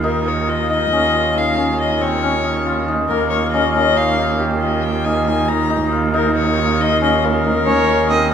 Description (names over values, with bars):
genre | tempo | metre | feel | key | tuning
contemporary instrumental, chamber music in an uneven meter | 138 BPM | 7/4 | straight | Eb mixolydian | A4 = 440 Hz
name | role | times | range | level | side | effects
rich violin | melody | 0.0-8.3 s | Bb4 to Bb5 | -20 LUFS | left 6 dB | none
hammered dulcimer | arpeggios | 0.0-8.3 s | Bb3 to G4 | -18 LUFS | left 2 dB | none
bright cello | bass | 0.0-8.3 s | Eb2 | -20 LUFS | right 5 dB | none
clear viola | second line | 7.7-8.3 s | Db5 to Eb5 | -17 LUFS | right 5 dB | none
room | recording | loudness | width
wet recital hall reverb, RT60 1.7 s | minimal, uncompressed stereo recording | -14 LUFS | side -8 dB against mid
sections
0.0-8.3 A section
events
none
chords
0.0 Eb7